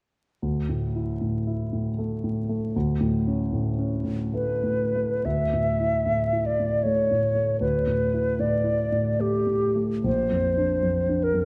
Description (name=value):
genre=classical, impressionist duo for flute and grand piano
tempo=62-79 BPM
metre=3/4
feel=rubato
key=unclear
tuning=A4 = 442 Hz
part: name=warm concert grand piano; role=accompaniment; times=0.4-11.4 s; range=Bb1 to E4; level=-28 LUFS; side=equal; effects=none
part: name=hollow concert flute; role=melody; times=4.3-11.4 s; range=G4 to E5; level=-26 LUFS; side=equal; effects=none
room=moderate concert hall reverb, RT60 2.0 s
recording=vinyl crackle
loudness=-25 LUFS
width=mono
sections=0.4-5.3 A section; 5.3-11.4 B section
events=none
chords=0.4 Dsus2; 2.7 Aadd9/D; 5.3 Dsus2; 10.1 Bbadd9